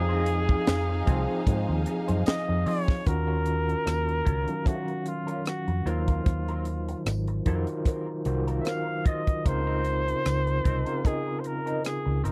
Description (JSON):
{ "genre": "lush 1970s-style soul", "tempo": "75 BPM", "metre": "4/4", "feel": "swing 54% on 16ths", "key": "unclear", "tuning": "A4 = 440 Hz", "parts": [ { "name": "clear flugelhorn", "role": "melody", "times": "0.0-12.3 s", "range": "F4 to F5", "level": "-34 LUFS", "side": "equal", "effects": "none" }, { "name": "warm symphonic violin section", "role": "second line", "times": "0.0-3.0 s", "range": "Eb4 to F5", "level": "-39 LUFS", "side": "equal", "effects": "slapback echo" }, { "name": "overdriven tine electric piano", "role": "accompaniment", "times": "0.0-12.3 s", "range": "Db3 to F5", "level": "-34 LUFS", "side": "equal", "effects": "fast tremolo" }, { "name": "vintage muted fingered electric bass", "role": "bass", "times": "0.0-12.3 s", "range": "G1 to F3", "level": "-30 LUFS", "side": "equal", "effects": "none" }, { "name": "electric guitar through a small old amp", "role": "riff", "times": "0.1-12.3 s", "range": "F3 to C5", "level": "-41 LUFS", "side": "equal", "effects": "wah" }, { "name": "tight funk drum kit", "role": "drums", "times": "0.3-12.3 s", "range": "hi-hat, kick drum, rim click, snare drum", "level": "-27 LUFS", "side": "equal", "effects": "none" }, { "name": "tambourine", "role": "percussion", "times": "0.7-12.0 s", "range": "none", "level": "-52 LUFS", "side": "equal", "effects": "none" } ], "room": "little or no reverb", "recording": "dry, close 1970s-style studio recording", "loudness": "-27 LUFS", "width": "mono", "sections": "0.0-3.1 A section; 3.1-12.3 B section", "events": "none", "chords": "0.0 Fm7; 3.1 Ebm9; 5.9 Ab13 (rootless); 9.5 Dbmaj13" }